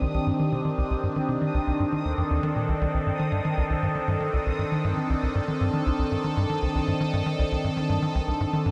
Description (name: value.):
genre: ambient, sequencer-driven space music.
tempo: 118 BPM.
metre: 4/4.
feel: straight.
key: C dorian.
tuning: A4 = 440 Hz.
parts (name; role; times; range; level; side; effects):
phased analog pad; sustained chords; 0.0-8.7 s; Eb3 to A4; -29 LUFS; equal; phaser, chorus.
tight sequencer bass; riff; 0.0-8.7 s; C2 to Eb3; -29 LUFS; equal; lush chorus, delay.
bubbling stepped-filter texture; texture; 0.0-8.7 s; Eb6; -39 LUFS; equal; chorus, built-in reverb.
room: wet lush hall reverb, RT60 2.5 s.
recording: dreamy mix soaked in reverb.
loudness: -26 LUFS.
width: mono.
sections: 0.0-8.7 A section.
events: none.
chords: 0.0 Cmadd9.